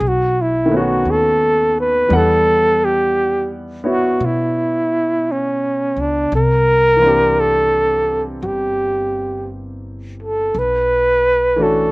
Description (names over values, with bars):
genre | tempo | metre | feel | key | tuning
jazz ballad | 57 BPM | 4/4 | swing 67% on 8ths | unclear | A4 = 440 Hz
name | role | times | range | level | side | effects
breathy flugelhorn | melody | 0.0-11.9 s | C#4 to B4 | -15 LUFS | equal | none
warm concert grand piano | accompaniment | 0.0-11.9 s | D#3 to F#5 | -22 LUFS | equal | none
upright bass | bass | 0.0-11.9 s | G1 to B2 | -24 LUFS | left 1 dB | none
room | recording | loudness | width
little or no reverb | recorded outdoors, with no room sound | -14 LUFS | side -23 dB against mid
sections
0.0-11.9 A section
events
none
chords
0.0 B7; 2.1 Emadd9; 6.3 C9; 10.5 Bm11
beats
0.02 1.07 | 2.11 3.16 4.21 5.26 | 6.31 7.37 8.42 9.48 | 10.54 11.59